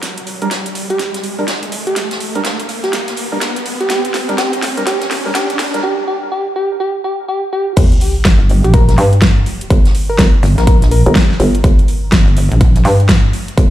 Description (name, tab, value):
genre	bass house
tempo	124 BPM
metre	4/4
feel	swing 62% on 16ths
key	G minor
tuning	A4 = 442 Hz
part	big-room dance drum kit	drums	0.0-13.7 s	crash cymbal, hi-hat, snare drum	-19 LUFS	equal	overdrive, high-pass filter on hats, high-pass filter on snare, high-pass filter on cymbals
part	jazz brush drum kit	drums	0.0-13.7 s	hi-hat, snare drum	-27 LUFS	right 1 dB	sidechain pumping on hats, high-pass filter on hats, high-pass filter on snare, high-pass filter on room
part	riser and sub drop	sound effects	0.0-9.7 s	none	-22 LUFS	equal	none
part	percussive organ stab	stabs	0.4-5.8 s	G3 to Bb4	-24 LUFS	right 1 dB	lush chorus, sidechain pumping, ping-pong delay
part	soft struck synth lead	melody	0.9-11.1 s	G4 to Bb4	-20 LUFS	equal	chorus, ping-pong delay
part	hollow knocking FM bass	bass	7.8-13.7 s	G1 to G2	-13 LUFS	equal	tube saturation, sidechain pumping
part	electronic kick drum	drums	7.8-13.7 s	none	-11 LUFS	equal	overdrive
part	pulsing pluck wobble bass	bass	8.3-12.8 s	G1 to Bb1	-11 LUFS	equal	chorus, sidechain pumping
room	light reverb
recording	played on a big sound system in a bare room, stone room reverb, high-pass filter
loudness	-11 LUFS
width	side -13 dB against mid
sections	0.0-7.8 A section; 7.8-13.7 B section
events	build-up 0.0-7.8; riser 0.0-5.8; filter sweep 0.0-7.8; drum fill 0.0-5.8; break 5.8-7.8; drop 7.8-13.7; impact 7.8-9.7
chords	0.0 Gm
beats	| 0.03 0.51 0.99 1.48 | 1.96 2.45 2.93 3.41 | 3.90 4.38 4.87 5.35 | 5.83 6.32 6.80 7.29 | 7.77 8.25 8.74 9.22 | 9.71 10.19 10.67 11.16 | 11.64 12.12 12.61 13.09 | 13.58